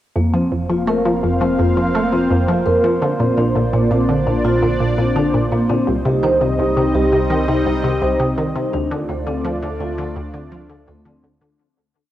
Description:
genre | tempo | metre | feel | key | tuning
ambient, sequencer-driven space music | 84 BPM | 4/4 | straight | unclear | A4 = 442 Hz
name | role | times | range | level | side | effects
sweeping resonant pad | sustained chords | 0.2-11.6 s | G3 to F5 | -21 LUFS | right 1 dB | chorus, cassette tape
vibraphone with soft mallets | arpeggios | 0.2-11.5 s | A3 to C5 | -20 LUFS | left 1 dB | auto-pan, cassette tape, ping-pong delay
resonant blip pluck | riff | 0.2-11.5 s | C2 to A3 | -19 LUFS | equal | chorus, cassette tape, ping-pong delay
warm sub bass | bass | 0.2-11.6 s | F1 to D2 | -28 LUFS | equal | none
room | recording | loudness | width
wet spring reverb, RT60 2.0 s | home recording on cassette | -15 LUFS | side -13 dB against mid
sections
0.2-11.6 A section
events
fade-out 7.8-11.6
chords
0.2 Fsus4; 3.0 Bbadd9; 5.9 Cm; 8.7 Dm7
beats
| 0.16 0.87 1.59 2.30 | 3.02 3.73 4.45 5.16 | 5.87 6.59 7.30 8.02 | 8.73 9.45 10.16 10.87

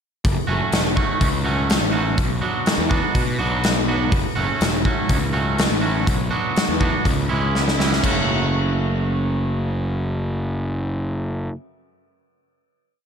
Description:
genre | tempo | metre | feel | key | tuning
quiet-loud alternative rock | 123 BPM | 4/4 | straight | F# minor | A4 = 438 Hz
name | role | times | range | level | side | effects
fuzz picked electric bass | bass | 0.2-11.5 s | E1 to B2 | -23 LUFS | equal | overdrive
big rock drum kit | drums | 0.2-8.2 s | crash cymbal, hi-hat, kick drum, snare drum | -21 LUFS | left 1 dB | none
twangy electric guitar | arpeggios | 0.5-11.6 s | F#2 to F#4 | -24 LUFS | right 3 dB | slapback echo
room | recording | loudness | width
moderate lush hall reverb, RT60 1.9 s, small room ambience | big arena sound | -18 LUFS | side -7 dB against mid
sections
0.2-8.0 verse; 8.0-11.9 final chord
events
drum fill 7.5-8.0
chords
0.2 F#m; 2.2 Bm; 4.1 F#m; 6.1 Bm; 7.1 C#m; 8.0 F#m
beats
| 0.25 0.73 1.21 1.70 | 2.18 2.66 3.15 3.63 | 4.12 4.61 5.09 5.58 | 6.07 6.56 7.05 7.54 | 8.03 8.52 9.01 9.50 | 9.99 10.48 10.97 11.46

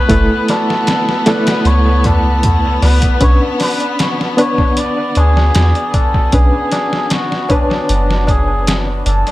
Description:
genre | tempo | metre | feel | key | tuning
trip hop | 77 BPM | 4/4 | straight | unclear | A4 = 440 Hz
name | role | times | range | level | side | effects
trumpet with cup mute | melody | 0.0-9.3 s | D4 to D5 | -18 LUFS | left 1 dB | tape echo
reed electric piano | accompaniment | 0.0-9.3 s | A3 to C#5 | -18 LUFS | equal | tremolo, dub echo
clear chamber string section | sustained chords | 0.0-9.3 s | B3 | -22 LUFS | left 2 dB | vintage 12-bit sampler grit
soft 808-style bass | bass | 0.1-9.2 s | F#1 to E2 | -13 LUFS | equal | tube saturation
trip hop sampler-style drum kit | drums | 0.1-9.3 s | hi-hat, kick drum, snare drum | -16 LUFS | equal | overdrive, dub echo
tabla | percussion | 0.1-9.3 s | none | -26 LUFS | left 2 dB | dub echo
room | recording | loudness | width
studio ambience | echo-heavy mix | -11 LUFS | side -16 dB against mid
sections
0.0-9.3 A section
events
none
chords
0.0 F#m7; 3.2 Bmadd9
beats
| 0.10 0.88 1.66 2.44 | 3.21 3.99 4.77 5.55 | 6.33 7.11 7.89 8.67

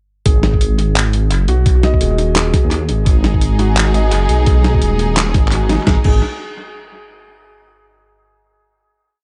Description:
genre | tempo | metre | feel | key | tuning
half-time drum and bass | 171 BPM | 4/4 | swing 58% on 16ths, half-time | G# minor | A4 = 443 Hz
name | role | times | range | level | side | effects
felt-muted upright piano | arpeggios | 0.3-6.2 s | D#4 to D#5 | -25 LUFS | equal | vintage 12-bit sampler grit, dub echo
dark detuned saw bass | bass | 0.3-6.2 s | D#1 to D#2 | -17 LUFS | equal | none
boom bap sampler-style drum kit | drums | 0.3-6.1 s | crash cymbal, handclaps, hi-hat, snare drum | -22 LUFS | equal | tape echo
electronic kick drum | drums | 0.3-6.1 s | none | -16 LUFS | equal | none
clear symphonic string section | sustained chords | 3.1-6.0 s | G#3 to G#4 | -24 LUFS | equal | sidechain pumping
room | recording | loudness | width
little or no reverb | echo-heavy mix, nothing above 10.3 kHz | -14 LUFS | mono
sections
0.3-5.9 drop; 5.9-7.3 final chord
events
drop 0.3-5.9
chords
0.3 G#m; 5.9 G#5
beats
| 0.26 0.61 0.96 1.31 | 1.66 2.01 2.36 2.71 | 3.07 3.42 3.77 4.12 | 4.47 4.82 5.17 5.52 | 5.87

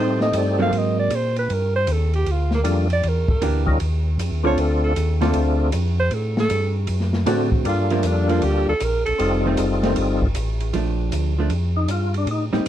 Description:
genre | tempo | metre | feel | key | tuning
soul jazz organ trio | 156 BPM | 4/4 | swing 67% on 8ths | Bb major | A4 = 439 Hz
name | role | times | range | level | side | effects
breathy alto saxophone | melody | 0.0-9.5 s | A3 to F5 | -24 LUFS | right 2 dB | none
percussive tonewheel organ | melody | 0.0-12.5 s | G3 to Bb4 | -22 LUFS | left 3 dB | slow rotary speaker, overdrive, chorus vibrato
vintage hollow-body jazz guitar | accompaniment | 0.0-1.1, 3.4-12.6 s | D3 to A4 | -24 LUFS | right 4 dB | none
mellow tonewheel organ | bass | 0.0-12.7 s | F1 to Bb2 | -22 LUFS | equal | overdrive, chorus vibrato, slow rotary speaker
open jazz drum kit | drums | 0.2-12.7 s | hi-hat, kick drum, ride cymbal, snare drum | -28 LUFS | equal | none
room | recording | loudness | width
light reverb | dark, warm production | -18 LUFS | side -11 dB against mid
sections
0.0-10.7 A section; 10.7-12.7 A section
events
alto saxophone solo 0.0-10.7; tonewheel organ solo 10.7-12.7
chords
0.0 Am7b5; 0.7 Ab9; 1.5 Gm7; 3.0 Em7b5; 3.8 Ebsus2; 4.6 Dm7; 6.1 Gsus2; 6.9 D7; 7.7 Gm7; 9.2 F7; 10.7 Bbmaj7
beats
0.34 0.72 1.11 | 1.49 1.88 2.26 2.65 | 3.03 3.42 3.80 4.19 | 4.57 4.96 5.34 5.73 | 6.11 6.50 6.88 7.27 | 7.66 8.04 8.43 8.81 | 9.20 9.58 9.96 10.35 | 10.73 11.12 11.51 11.89 | 12.28 12.66

